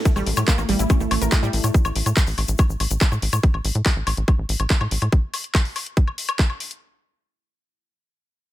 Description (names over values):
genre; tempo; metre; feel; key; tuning
psychedelic trance; 142 BPM; 4/4; straight; unclear; A4 = 442 Hz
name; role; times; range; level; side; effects
deep dark ambient pad; texture; 0.0-1.7 s; A3 to A5; -30 LUFS; equal; chorus, built-in reverb, sidechain pumping
wide unison pluck; riff; 0.1-1.5 s; G3 to Bb4; -27 LUFS; right 2 dB; auto-pan, sidechain pumping, digital delay
drum and bass drum kit; drums; 0.1-6.8 s; handclaps, hi-hat, woodblock; -25 LUFS; left 2 dB; overdrive
electronic kick drum; drums; 0.1-6.5 s; none; -17 LUFS; equal; overdrive
egg shaker; percussion; 0.1-3.4 s; none; -34 LUFS; left 6 dB; none
tight sequencer bass; bass; 0.2-5.1 s; A1 to A2; -23 LUFS; equal; none
room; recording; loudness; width
little or no reverb; none; -18 LUFS; side -15 dB against mid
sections
0.1-6.8 A section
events
filter sweep on analog synth bass 0.1-5.1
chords
0.1 A5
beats
| 0.05 0.48 0.90 1.32 | 1.74 2.17 2.59 3.01 | 3.43 3.86 4.28 4.70 | 5.12 5.55 5.97 6.39